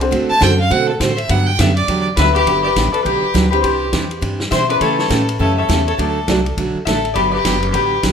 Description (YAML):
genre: country, western swing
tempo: 205 BPM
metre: 4/4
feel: swing 61% on 8ths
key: G major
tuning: A4 = 441 Hz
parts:
  - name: warm upright piano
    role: accompaniment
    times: 0.0-6.4 s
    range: A3 to D5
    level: -23 LUFS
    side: left 2 dB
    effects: none
  - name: upright bass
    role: bass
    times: 0.0-8.1 s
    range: F#1 to C#3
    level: -20 LUFS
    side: equal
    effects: none
  - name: vintage drum kit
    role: drums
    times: 0.0-8.1 s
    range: hi-hat, kick drum, ride cymbal, snare drum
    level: -24 LUFS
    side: left 1 dB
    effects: none
  - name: picked steel-string acoustic guitar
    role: accompaniment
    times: 0.1-8.1 s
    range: C3 to A4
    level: -20 LUFS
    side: right 4 dB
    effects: none
  - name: clear fiddle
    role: second line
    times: 0.3-8.1 s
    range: G4 to A5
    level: -20 LUFS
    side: right 2 dB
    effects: none
  - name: concert harp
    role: melody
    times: 2.2-8.1 s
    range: G4 to E5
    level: -18 LUFS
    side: left 6 dB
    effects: none
room: moderate studio reverb, RT60 0.7 s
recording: none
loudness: -13 LUFS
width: side -7 dB against mid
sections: 0.0-2.5 A section; 2.5-8.1 B section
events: fiddle solo 0.0-2.5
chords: 0.1 D7; 1.3 Gmaj7; 3.6 Cadd9; 4.8 A7; 6.0 D; 7.2 Gmaj7